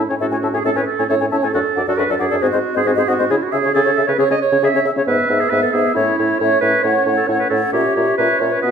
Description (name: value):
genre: quick classical-period movement for wind quintet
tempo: 135 BPM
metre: 4/4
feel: straight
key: C# minor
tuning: A4 = 438 Hz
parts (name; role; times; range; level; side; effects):
- mellow hollow concert flute; melody; 0.0-8.7 s; G#4 to A5; -22 LUFS; left 8 dB; none
- mellow oboe; second line; 0.0-8.7 s; F#4 to E5; -23 LUFS; left 4 dB; none
- clear clarinet; accompaniment; 0.0-8.7 s; E4 to E5; -18 LUFS; right 6 dB; none
- mellow French horn; accompaniment; 0.0-8.7 s; B3 to D4; -25 LUFS; left 1 dB; none
- mellow bassoon; bass; 0.0-8.7 s; F#2 to C#3; -21 LUFS; right 1 dB; none
room: wet recital hall reverb, RT60 1.4 s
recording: minimal, uncompressed stereo recording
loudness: -14 LUFS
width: side -7 dB against mid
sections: 0.0-8.7 A section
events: none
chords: 0.0 Amaj7; 1.5 D/F#; 2.4 G#7; 3.3 C#m; 5.1 E/G#; 6.0 A; 6.8 F#m/A; 7.7 A#dim7